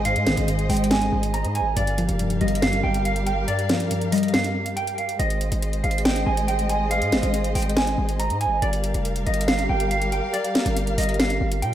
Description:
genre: hip hop, trap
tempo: 140 BPM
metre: 4/4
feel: half-time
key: unclear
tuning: A4 = 438 Hz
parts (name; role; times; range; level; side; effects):
- mellow electric guitar; melody; 0.0-11.7 s; D5 to Bb5; -26 LUFS; right 2 dB; wide subtle chorus, diffuse ambient delay
- soft round pluck; accompaniment; 0.0-5.2 s; G2 to Ab3; -26 LUFS; left 1 dB; chorus, phaser
- dark chamber string section; sustained chords; 0.0-11.7 s; G3 to F5; -28 LUFS; equal; none
- distorted 808-style bass; bass; 0.0-11.7 s; F1 to Bb2; -25 LUFS; equal; distortion
- trap drum kit; drums; 0.1-11.7 s; hi-hat, snare drum; -26 LUFS; equal; none
room: moderate lush hall reverb, RT60 1.7 s, digital ambience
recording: dreamy mix soaked in reverb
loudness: -20 LUFS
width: side -11 dB against mid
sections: 0.0-5.2 A section; 5.2-11.7 A section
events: kick muted 3.5-5.2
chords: 0.0 Ab; 1.8 Gm7; 5.2 Ab; 8.6 Gm7

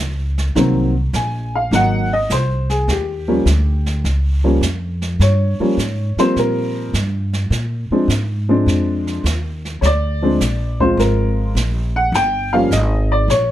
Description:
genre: jazz piano trio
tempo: 104 BPM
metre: 4/4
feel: swing 68% on 8ths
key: unclear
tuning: A4 = 440 Hz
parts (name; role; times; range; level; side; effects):
- upright bass; bass; 0.0-13.5 s; G1 to Bb2; -18 LUFS; equal; none
- jazz brush drum kit; drums; 0.4-13.5 s; brushed snare drum, hi-hat, kick drum, snare drum; -27 LUFS; right 3 dB; none
- warm upright piano; melody; 0.6-13.5 s; Eb3 to Ab5; -17 LUFS; left 1 dB; none
room: little or no reverb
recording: none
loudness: -15 LUFS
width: side -13 dB against mid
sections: 0.0-13.5 A section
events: upright piano solo 0.0-13.5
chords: 0.0 Ab7; 2.9 Eb7; 7.5 Bb7; 12.1 Gm7b5

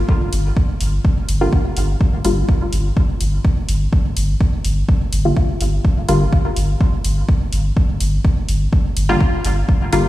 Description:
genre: dub techno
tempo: 125 BPM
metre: 4/4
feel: straight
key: G minor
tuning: A4 = 440 Hz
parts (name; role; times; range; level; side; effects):
- warm sub bass; bass; 0.0-10.1 s; G1; -18 LUFS; equal; tube saturation, sidechain pumping
- electronic kick drum; drums; 0.1-9.8 s; none; -16 LUFS; equal; overdrive
- electronic hi-hat; drums; 0.3-10.0 s; none; -30 LUFS; left 1 dB; none
- filtered dub chord stab; stabs; 1.4-10.1 s; D3 to F4; -21 LUFS; left 1 dB; chorus, phaser, sidechain pumping, dub echo
room: digital ambience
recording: played on a big sound system in a bare room, stone room reverb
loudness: -15 LUFS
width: side -15 dB against mid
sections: 0.0-10.1 A section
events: none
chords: none

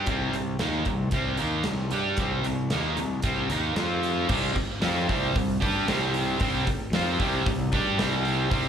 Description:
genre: hard rock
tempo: 114 BPM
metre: 4/4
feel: straight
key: C minor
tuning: A4 = 440 Hz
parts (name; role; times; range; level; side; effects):
- distorted electric guitar; riff; 0.0-8.7 s; C3 to G4; -30 LUFS; left 10 dB; distortion, slapback echo
- distorted electric guitar; riff; 0.0-8.7 s; C3 to G4; -28 LUFS; right 9 dB; overdrive, slapback echo
- fuzz fingered electric bass; bass; 0.0-8.7 s; C2 to G2; -30 LUFS; left 1 dB; overdrive
- big rock drum kit; drums; 0.1-8.6 s; crash cymbal, hi-hat, kick drum, snare drum; -30 LUFS; equal; none
room: small room reverb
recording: live gig heard through the venue's PA, club reverb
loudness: -23 LUFS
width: side -8 dB against mid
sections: 0.0-4.3 A section; 4.3-8.7 B section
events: none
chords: 0.0 Cm; 3.8 F5; 4.3 C5

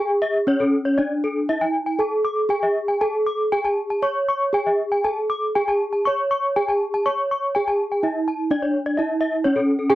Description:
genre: gamelan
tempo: 118-132 BPM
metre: 4/4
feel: straight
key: C# pelog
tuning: A4 = 441 Hz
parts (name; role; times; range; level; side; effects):
- gamelan-type bronze metallophone; melody; 0.0-9.9 s; C#4 to C#5; -21 LUFS; right 1 dB; none
- gamelan-type bronze metallophone; arpeggios; 0.0-9.9 s; A4-40c to D6; -23 LUFS; left 2 dB; none
room: light reverb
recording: dry, close 1970s-style studio recording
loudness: -19 LUFS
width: side -15 dB against mid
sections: 0.0-9.9 A section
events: none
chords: none

